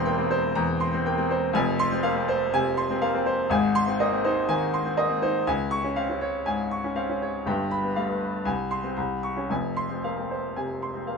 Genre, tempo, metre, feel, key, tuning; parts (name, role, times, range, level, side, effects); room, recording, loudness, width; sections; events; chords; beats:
classical, virtuoso piano study; 121 BPM; 4/4; rubato; F minor; A4 = 440 Hz
bright grand piano; solo; 0.0-11.2 s; E1 to Db6; -23 LUFS; equal
moderate studio ambience, RT60 0.5 s; minimal, uncompressed stereo recording; -23 LUFS; side -5 dB against mid
0.0-11.2 A section
0.0 C7/E; 1.5 Fm; 3.5 Ab; 5.5 Db; 7.5 G7; 8.5 Ab/C; 9.0 Bbmadd9/C; 9.5 Fm
0.06 0.55 1.04 | 1.53 2.03 2.52 3.01 | 3.50 3.99 4.49 4.98 | 5.47 5.97 6.47 6.97 | 7.46 7.96 8.46 8.97 | 9.49 10.03 10.55 11.07